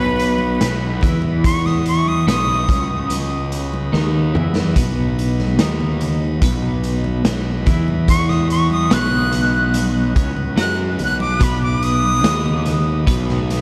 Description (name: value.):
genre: psychedelic rock.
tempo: 72 BPM.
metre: 4/4.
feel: straight.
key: B major.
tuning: A4 = 439 Hz.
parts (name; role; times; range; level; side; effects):
breathy bright jazz flute; melody; 0.0-3.1, 8.1-12.6 s; B4 to F#6; -24 LUFS; equal; analog delay.
bright tonewheel organ; sustained chords; 0.0-13.6 s; F#3 to D#5; -36 LUFS; equal; overdrive, stopped rotary speaker.
twelve-string electric guitar; riff; 0.0-13.6 s; B2 to F#4; -23 LUFS; equal; tremolo.
fuzz picked electric bass; bass; 0.0-13.6 s; B1 to F#2; -24 LUFS; equal; overdrive.
raw garage drum kit; drums; 0.2-13.6 s; hi-hat, kick drum, snare drum, toms; -23 LUFS; equal; none.
congas; percussion; 0.4-13.3 s; none; -33 LUFS; equal; none.
room: moderate cathedral reverb, RT60 7.1 s.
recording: dreamy mix soaked in reverb.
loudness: -18 LUFS.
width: mono.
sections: 0.0-13.6 A section.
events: flute solo 0.0-13.6; drum fill 3.9-4.8.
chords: 0.0 B.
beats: 0.61 | 1.44 2.27 3.10 3.93 | 4.76 5.59 6.42 7.26 | 8.09 8.92 9.75 10.58 | 11.41 12.24 13.07.